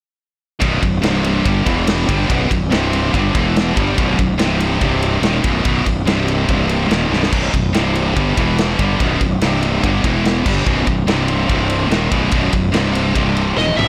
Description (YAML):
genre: heavy metal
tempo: 143 BPM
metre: 4/4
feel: straight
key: unclear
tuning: A4 = 440 Hz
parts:
  - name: distorted electric guitar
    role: riff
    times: 0.6-13.9 s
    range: B1 to G3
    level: -27 LUFS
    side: equal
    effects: none
  - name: heavy high-gain guitar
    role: riff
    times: 0.6-13.9 s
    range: B1 to G3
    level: -24 LUFS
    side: equal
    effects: distortion
  - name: high-gain distorted guitar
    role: riff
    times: 0.6-13.9 s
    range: B1 to G3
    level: -24 LUFS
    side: equal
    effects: distortion
  - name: fuzz fingered electric bass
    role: bass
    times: 0.6-13.9 s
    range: B0 to G1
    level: -21 LUFS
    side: equal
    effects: overdrive
  - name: modern studio drum kit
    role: drums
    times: 0.6-13.9 s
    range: crash cymbal, kick drum, ride cymbal, snare drum, toms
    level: -22 LUFS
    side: equal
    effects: none
  - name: high-gain lead guitar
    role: melody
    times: 13.6-13.9 s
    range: D#5 to E5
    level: -18 LUFS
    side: equal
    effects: distortion
room: small room ambience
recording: blown-out, overdriven recording, overdrive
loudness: -16 LUFS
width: mono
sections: 0.6-13.9 A section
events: drum fill 7.1, 13.6-13.9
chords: 0.6 B5; 1.0 C5; 1.5 G5; 1.7 E5; 2.1 B5; 2.7 C5; 3.1 G5; 3.3 E5; 3.8 B5; 4.4 C5; 5.2 B; 6.1 C5; 6.9 B; 7.7 C5; 8.2 G5; 8.4 E5; 8.8 B5; 9.4 C5; 9.8 G5; 10.0 E5; 10.5 B5; 11.1 C5; 11.9 B; 12.7 C5